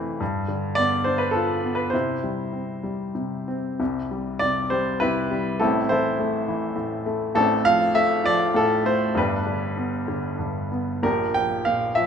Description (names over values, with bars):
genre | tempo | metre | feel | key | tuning
classical, lyrical solo piano | 93-108 BPM | 3/4 | rubato | C major | A4 = 440 Hz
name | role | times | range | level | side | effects
clear baby grand piano | solo | 0.0-12.1 s | G1 to G5 | -21 LUFS | equal | none
room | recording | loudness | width
moderate scoring stage reverb, RT60 1.6 s | minimal, uncompressed stereo recording | -21 LUFS | side -7 dB against mid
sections
0.0-3.8 A section; 3.8-12.1 A section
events
none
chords
0.2 G7; 1.9 C; 5.6 Am; 7.4 F6/A; 9.2 G; 11.0 Bb6